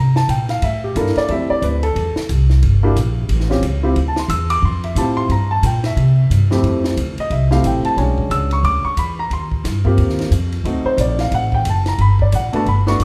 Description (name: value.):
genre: jazz, small-group swing and bop.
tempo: 179 BPM.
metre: 4/4.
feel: swing 62% on 8ths.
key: unclear.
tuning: A4 = 440 Hz.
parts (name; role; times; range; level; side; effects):
warm grand piano; accompaniment; 0.0-13.0 s; F2 to E6; -22 LUFS; equal; none.
upright bass; bass; 0.0-13.0 s; F#1 to C3; -19 LUFS; equal; none.
compact cocktail drum kit; drums; 0.2-13.0 s; hi-hat, kick drum, ride cymbal, snare drum; -30 LUFS; equal; none.
room: moderate large studio reverb, RT60 1.2 s.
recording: band playing live in one room.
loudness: -17 LUFS.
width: mono.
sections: 0.0-6.6 A section; 6.6-13.0 A section.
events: none.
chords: 0.0 C13; 1.3 Fmaj7; 2.6 Em7b5; 3.3 A7alt; 4.0 Dm11; 5.3 Gm; 6.0 C; 6.6 Fmaj9; 8.0 E13; 9.3 Eb69; 10.7 D7b9; 12.0 Gmaj7.